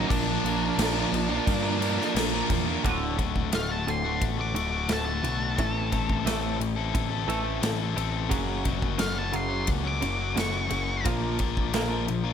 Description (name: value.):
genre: quiet-loud alternative rock.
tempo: 88 BPM.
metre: 4/4.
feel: straight.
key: unclear.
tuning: A4 = 440 Hz.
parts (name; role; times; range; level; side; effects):
octave-fuzz lead guitar; melody; 0.0-11.1 s; D4 to D6; -32 LUFS; equal; distortion, slapback echo.
string machine, violins; sustained chords; 0.0-2.8 s; A#4 to D6; -41 LUFS; right 1 dB; none.
biting overdriven guitar; riff; 0.0-12.3 s; D2 to Bb4; -30 LUFS; left 10 dB; none.
thick fuzz guitar; riff; 0.0-2.8 s; Bb2 to Bb4; -29 LUFS; right 15 dB; distortion.
growling picked electric bass; bass; 0.0-12.3 s; D1 to G2; -31 LUFS; equal; overdrive.
big rock drum kit; drums; 0.1-12.2 s; crash cymbal, kick drum, ride cymbal, snare drum; -30 LUFS; equal; none.
twangy electric guitar; arpeggios; 2.8-12.3 s; D2 to Bb3; -34 LUFS; right 5 dB; analog chorus.
room: light reverb, small room ambience.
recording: none.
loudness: -24 LUFS.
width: side -8 dB against mid.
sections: 0.0-2.8 A section; 2.8-12.3 B section.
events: lead electric guitar solo 2.8-12.3.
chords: 0.1 Bb; 2.8 D; 5.6 Am; 8.3 F#; 11.1 Bb.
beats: | 0.11 0.79 1.47 2.16 | 2.84 3.52 4.21 4.89 | 5.58 6.26 6.95 7.63 | 8.32 9.01 9.69 10.38 | 11.06 11.75.